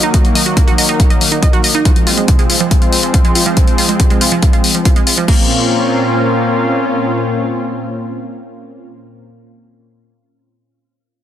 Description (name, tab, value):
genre	uplifting trance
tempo	140 BPM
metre	4/4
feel	straight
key	Bb minor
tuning	A4 = 435 Hz
part	lush unison pad	sustained chords	0.0-8.9 s	Bb2 to F4	-16 LUFS	left 1 dB	chorus, sidechain pumping
part	analog pluck	arpeggios	0.0-5.5 s	C3 to Eb5	-19 LUFS	right 5 dB	chorus, sidechain pumping, digital delay
part	punchy analog drum machine	drums	0.0-5.4 s	crash cymbal, hi-hat	-16 LUFS	left 4 dB	none
part	electronic kick drum	drums	0.1-5.4 s	none	-11 LUFS	equal	none
room	light reverb, digital ambience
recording	dense, heavily limited modern master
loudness	-10 LUFS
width	side -10 dB against mid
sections	0.0-5.3 A section; 5.3-8.7 B section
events	filter sweep on synth pluck 0.0-5.3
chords	0.0 Ebm; 1.9 Fm; 5.3 Bbmadd9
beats	| 0.14 0.57 1.00 1.43 | 1.85 2.28 2.71 3.14 | 3.57 4.00 4.42 4.85 | 5.28 5.71 6.14 6.57 | 7.00 7.42 7.85 8.28